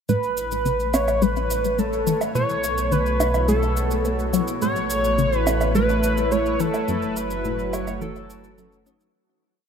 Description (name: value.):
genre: ambient, sequencer-driven space music.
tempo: 106 BPM.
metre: 4/4.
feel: straight.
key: A major.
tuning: A4 = 441 Hz.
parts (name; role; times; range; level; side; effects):
pulse-width lead; melody; 0.1-8.8 s; A4 to C#5; -23 LUFS; equal; chorus, ping-pong delay.
sweeping resonant pad; sustained chords; 0.1-9.1 s; A2 to C#5; -30 LUFS; right 1 dB; chorus.
vibraphone with medium hard mallets; arpeggios; 0.1-9.1 s; A3 to A4; -32 LUFS; right 4 dB; auto-pan, ping-pong delay.
resonant blip pluck; riff; 0.1-9.1 s; F#2 to D#4; -26 LUFS; left 2 dB; chorus, phaser, ping-pong delay.
round analog bass; bass; 0.1-9.1 s; F#1 to B1; -27 LUFS; equal; none.
shaker and woodblock; percussion; 0.1-9.1 s; none; -30 LUFS; right 3 dB; ping-pong delay.
room: moderate huge ambient reverb, RT60 7.7 s.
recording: none.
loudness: -19 LUFS.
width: side -7 dB against mid.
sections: 0.1-9.1 A section.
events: fade-in on vibraphone 0.1-9.1; fade-in on analog synth pad 0.1-9.1; filter sweep on synth arpeggio sound 0.1-9.1; fade-out 6.1-9.1.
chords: 0.1 Aadd9; 2.4 Bsus2; 4.6 Aadd9; 6.9 F#m.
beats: | 0.09 0.66 1.22 1.79 | 2.35 2.92 3.49 4.05 | 4.62 5.18 5.75 6.32 | 6.88 7.45 8.01 8.58.